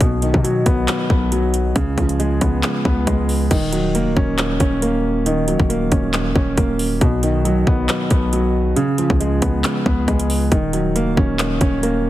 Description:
hip hop, trap; 137 BPM; 4/4; half-time; Eb minor; A4 = 439 Hz
dark concert grand piano; accompaniment; 0.0-12.1 s; B2 to Db4; -18 LUFS; right 1 dB
hard-hitting 808-style bass; bass; 0.0-12.1 s; Eb1 to B2; -21 LUFS; equal
trap drum kit; drums; 0.0-11.9 s; crash cymbal, handclaps, hi-hat, kick drum; -20 LUFS; equal; overdrive
light reverb, digital ambience; heavily compressed radio sound, multiband compression; -15 LUFS; side -14 dB against mid
0.0-3.5 A section; 3.5-12.1 B section
0.0 B; 1.8 Db7; 3.5 Ebm7; 7.0 B; 8.8 Db7; 10.5 Ebm7

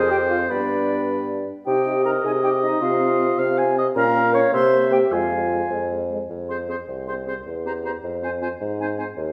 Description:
quick classical-period movement for wind quintet; 104 BPM (dotted quarters); 6/8; straight; F minor from 4.0 s; A4 = 440 Hz
warm oboe; second line; 0.0-9.1 s; B4 to Ab5; -29 LUFS; equal
dark clarinet; accompaniment; 0.0-9.1 s; D4 to Db5; -26 LUFS; equal
mellow French horn; accompaniment; 0.0-9.0 s; Ab3 to Eb4; -34 LUFS; equal
dark bassoon; bass; 0.0-9.3 s; C2 to C3; -26 LUFS; equal
concert flute; melody; 0.1-9.0 s; D5 to Db6; -31 LUFS; equal
wet recital hall reverb, RT60 1.6 s; -22 LUFS; mono
0.0-6.3 A section; 6.3-9.3 B section
0.5 G; 1.7 Cm; 2.8 F5/C; 4.0 Bbm; 4.5 C7; 5.1 Fm; 7.5 C7/E; 8.0 Fm; 8.6 Ab

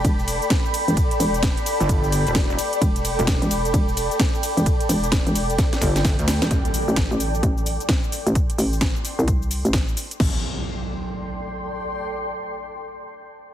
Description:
bass house; 130 BPM; 4/4; swing 62% on 16ths; A minor; A4 = 440 Hz
hollow knocking FM bass; bass; 0.0-10.4 s; E1 to C2; -22 LUFS; equal; tube saturation, sidechain pumping
electronic kick drum; drums; 0.0-10.3 s; -21 LUFS; equal
house drum kit; drums; 0.0-10.3 s; crash cymbal, hi-hat, ride cymbal, shaker, snare drum; -26 LUFS; equal
granular cloud pad; texture; 0.0-12.0 s; A4 to C6; -27 LUFS; equal; built-in reverb, sidechain pumping
pulsing pluck wobble bass; bass; 1.8-6.4 s; E1 to D2; -21 LUFS; equal; chorus, overdrive, sidechain pumping
impact; sound effects; 6.5-12.0 s; -32 LUFS; right 1 dB
light reverb, digital ambience; heavily compressed radio sound, multiband compression; -19 LUFS; side -11 dB against mid
0.0-6.5 A section; 6.5-10.2 B section; 10.2-12.0 C section
drop 0.0-6.5; drum fill 5.6-6.5; fade-out on ambient pad 6.5-10.2; impact 6.5-8.4
0.0 Em; 6.5 Am

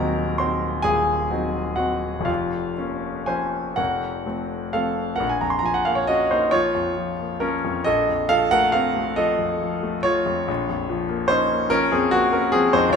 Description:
classical, romantic nocturne for solo piano; 39-49 BPM (dotted quarters); 6/8; rubato; Bb minor; A4 = 439 Hz
warm concert grand piano; solo; 0.0-13.0 s; Eb1 to C6; -20 LUFS; equal
moderate recital hall reverb, RT60 1.6 s; minimal, uncompressed stereo recording; -20 LUFS; side -6 dB against mid
0.0-5.2 A section; 5.2-13.0 B section
0.0 Cdim/Eb; 2.3 Bbm/F; 3.8 F; 5.2 Bbm; 7.9 F7/Bb; 10.5 Bbm

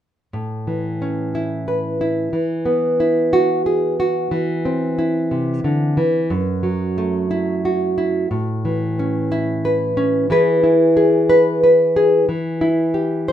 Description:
folk, solo fingerstyle acoustic guitar; 60 BPM (dotted quarters); 6/8; straight; A major; A4 = 439 Hz
nylon-string guitar; solo; 0.3-13.3 s; F#2 to C5; -16 LUFS; equal
moderate studio reverb, RT60 0.8 s; minimal, uncompressed stereo recording; -16 LUFS; side -10 dB against mid
0.3-8.3 A section; 8.3-13.3 B section
0.3 Aadd9; 2.3 Eadd9; 4.3 C/E; 6.3 F#m7; 8.3 Aadd9; 10.3 E; 12.3 C/E (rootless)

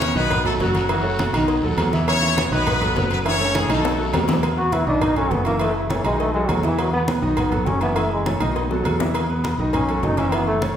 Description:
latin, salsa; 204 BPM; 4/4; straight; A4 = 438 Hz
brilliant horn section; melody; 0.0-4.1 s; F#3 to C#5; -23 LUFS; left 2 dB
clear grand piano; accompaniment; 0.0-10.7 s; D#3 to E5; -24 LUFS; right 1 dB
fingered electric bass; bass; 0.0-10.7 s; F#1 to E2; -24 LUFS; equal
congas; percussion; 0.0-10.8 s; -29 LUFS; equal
cowbell and bongos; percussion; 0.0-10.8 s; -30 LUFS; left 4 dB
guiro; percussion; 0.0-4.4 s; -36 LUFS; left 2 dB
timbales and agogo bells; percussion; 0.0-10.8 s; -27 LUFS; right 2 dB
bright trombone; melody; 4.6-10.6 s; C#3 to F#4; -23 LUFS; left 1 dB
wet scoring stage reverb, RT60 1.4 s; recorded in a church or concert hall; -18 LUFS; side -9 dB against mid
0.0-4.4 A section; 4.4-10.8 B section
drum fill 3.3-4.4, 8.3-9.2; trombone solo 4.4-10.8
0.3 B7; 0.9 F#m7; 1.5 B7; 2.1 E5; 2.7 B7; 3.3 F#m7; 3.8 B7; 4.4 E5; 5.0 B7; 5.6 F#m7; 6.2 B7; 6.8 E5; 7.4 B7; 8.0 F#m7; 8.6 B7; 9.2 E5; 9.7 B7

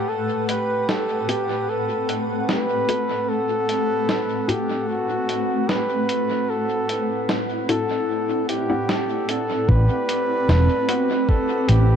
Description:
ambient dub; 75 BPM; 4/4; straight; A dorian; A4 = 440 Hz
trumpet with bucket mute; melody; 0.0-12.0 s; F#4 to B4; -23 LUFS; equal; dub echo
granular cloud pad; sustained chords; 0.0-12.0 s; A2 to F#5; -25 LUFS; equal; built-in reverb
lo-fi sampler-style drum kit; drums; 0.5-11.9 s; hi-hat, snare drum; -28 LUFS; equal; dub echo
filtered dub chord stab; stabs; 1.3-11.2 s; A2 to F#5; -29 LUFS; left 3 dB; chorus, cassette tape, dub echo
hollow-body short-scale fingered electric bass; bass; 9.7-12.0 s; E1 to A1; -15 LUFS; equal
electronic kick drum; drums; 9.7-11.5 s; -19 LUFS; equal
light reverb; echo-heavy mix; -19 LUFS; side -8 dB against mid
0.0-9.7 A section; 9.7-12.0 B section
0.0 Am69

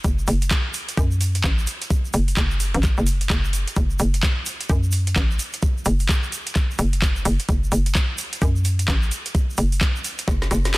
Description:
bass house; 129 BPM; 4/4; swing 62% on 16ths; F# minor; A4 = 439 Hz
hollow knocking FM bass; bass; 0.0-10.8 s; F#1 to F#2; -20 LUFS; equal; overdrive, sidechain pumping
electronic kick drum; drums; 0.0-10.4 s; -20 LUFS; equal; overdrive, studio reverb
garage drum kit; drums; 0.0-10.8 s; handclaps, hi-hat, snare drum; -26 LUFS; right 1 dB; overdrive, studio reverb
tube shaker; percussion; 0.0-10.8 s; -35 LUFS; right 2 dB
little or no reverb; dense, heavily limited modern master; -19 LUFS; side -22 dB against mid
0.0-10.8 A section
drum fill 10.3-10.8

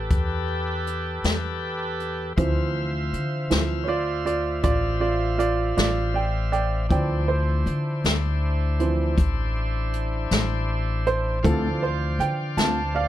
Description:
slow blues; 53 BPM (dotted quarters); 12/8; straight; A4 = 440 Hz
clear baby grand piano; accompaniment; 0.0-13.1 s; E3 to A5; -25 LUFS; right 4 dB
bright tonewheel organ; sustained chords; 0.0-13.1 s; D4 to F5; -31 LUFS; left 1 dB; slow rotary speaker, overdrive
upright bass; bass; 0.0-13.1 s; A1 to D3; -25 LUFS; left 1 dB
jazz brush drum kit; drums; 0.1-12.8 s; hi-hat, kick drum, snare drum; -24 LUFS; left 1 dB
mellow electric guitar; accompaniment; 11.4-12.8 s; D3 to F4; -26 LUFS; left 4 dB; harmonic tremolo
light reverb; -22 LUFS; side -13 dB against mid
0.0-13.1 A section
grand piano solo 0.0-13.1
0.0 A7(no3); 2.4 Dm7

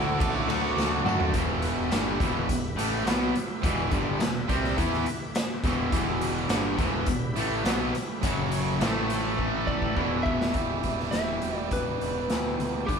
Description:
classic rock; 104 BPM; 4/4; straight; E dorian; A4 = 440 Hz
lightly driven lead guitar; melody; 0.0-0.7, 9.7-13.0 s; G4 to F#5; -32 LUFS; left 1 dB
overdriven slide guitar; second line; 0.0-1.2 s; E4 to A4; -34 LUFS; left 3 dB
bright tonewheel organ; sustained chords; 0.0-10.5 s; A3 to E5; -38 LUFS; equal
crunchy overdriven guitar; riff; 0.0-13.0 s; E2 to F#4; -33 LUFS; left 7 dB
distorted electric guitar; riff; 0.0-13.0 s; E2 to G4; -31 LUFS; right 7 dB; overdrive
distorted electric guitar; riff; 0.0-10.5 s; E2 to E4; -32 LUFS; left 1 dB; distortion
growling picked electric bass; bass; 0.0-13.0 s; E1 to F#2; -34 LUFS; equal; overdrive
raw garage drum kit; drums; 0.2-13.0 s; hi-hat, kick drum, ride cymbal, snare drum, toms; -29 LUFS; equal
tambourine; percussion; 0.2-1.3 s; -48 LUFS; left 8 dB
warm grand piano; accompaniment; 1.0-1.3 s; F#4 to F#5; -35 LUFS; equal
moderate large studio reverb, RT60 1.3 s; band playing live in one room; -24 LUFS; side -6 dB against mid
0.0-1.3 A section; 1.3-10.5 B section; 10.5-13.0 C section
drum fill 0.8-1.3, 9.4-10.5
0.0 D; 1.3 Em; 8.2 F#5; 8.8 A5; 10.0 Em

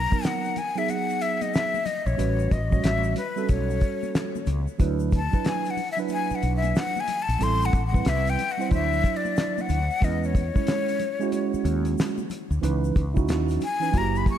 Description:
hip hop, jazz-hop; 92 BPM; 4/4; swing 64% on 16ths; A4 = 440 Hz
breathy jazz flute; melody; 0.0-14.4 s; B4 to C#6; -27 LUFS; left 5 dB; ping-pong delay
mellow fretless electric bass; bass; 0.0-14.2 s; F#1 to E2; -25 LUFS; equal
mellow tine electric piano; accompaniment; 0.1-14.4 s; E3 to C#5; -28 LUFS; right 8 dB
cloth-damped thuddy drum kit; drums; 0.1-14.4 s; hi-hat, kick drum, snare drum; -26 LUFS; equal
tube shaker and congas; percussion; 0.1-14.4 s; -40 LUFS; left 14 dB
light reverb, small room ambience; -22 LUFS; side -10 dB against mid
0.0-14.4 A section
flute solo 0.0-14.4
0.0 Bmaj7; 2.2 A13; 4.8 D69; 7.4 Am7; 8.7 D9; 10.0 E6; 12.6 C#m9

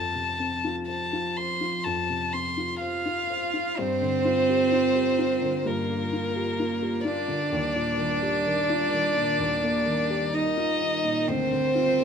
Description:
neoclassical piano and strings; 64 BPM; 4/4; rubato; G minor; A4 = 440 Hz
rich violin; melody; 0.0-12.0 s; Bb4 to C6; -26 LUFS; left 3 dB
warm cello; second line; 0.0-12.0 s; F3 to F4; -29 LUFS; right 8 dB
felt-muted upright piano; accompaniment; 0.0-12.0 s; D2 to C5; -30 LUFS; left 3 dB
ethereal airy pad; sustained chords; 4.9-12.0 s; Eb3 to Bb4; -36 LUFS; equal; ensemble chorus, built-in reverb
moderate large studio reverb, RT60 0.9 s; minimal, uncompressed stereo recording; -23 LUFS; side -7 dB against mid
0.0-3.8 A section; 3.8-12.0 A section
0.0 F; 3.8 Gm7; 7.5 Ebmaj7; 11.3 Bb/D

